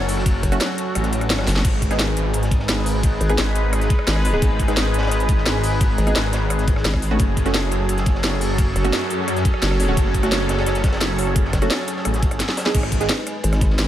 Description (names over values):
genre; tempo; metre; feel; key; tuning
dark technical drum and bass; 173 BPM; 4/4; straight; G# phrygian; A4 = 442 Hz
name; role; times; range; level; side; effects
sweeping resonant pad; sustained chords; 0.0-13.9 s; F#3 to B4; -27 LUFS; equal; chorus, sidechain pumping
filtered dub chord stab; stabs; 0.0-13.9 s; A3 to G#4; -27 LUFS; right 2 dB; chorus, tape echo
wide detuned saw bass; bass; 0.0-13.1 s; F#1 to F#2; -22 LUFS; equal; chorus, overdrive, sidechain pumping
crunchy breakbeat drum kit; drums; 0.0-13.9 s; hi-hat, ride cymbal, snare drum; -32 LUFS; equal; high-pass filter on cymbals, high-pass filter on hats, high-pass filter on snare, high-pass filter on room
warbly tape-like pad; texture; 0.0-12.7 s; F#4 to B5; -29 LUFS; right 2 dB; chorus, built-in reverb, sidechain pumping
drum and bass drum kit; drums; 0.1-13.9 s; crash cymbal, hi-hat, rim click, snare drum; -24 LUFS; equal; none
electronic kick drum; drums; 0.3-13.7 s; none; -20 LUFS; equal; none
vowel-sweep wobble bass; bass; 0.4-13.9 s; F#1 to G#1; -20 LUFS; equal; chorus
room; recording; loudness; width
light reverb, studio reverb; none; -17 LUFS; side -12 dB against mid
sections
0.0-12.7 A section; 12.7-13.9 A section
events
drop 0.0-12.7, 12.7-13.9; kick drops out 1.0-1.6; drum fill 1.5, 12.4-12.7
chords
0.0 F#m; 1.6 G#m; 7.2 F#m; 12.7 G#m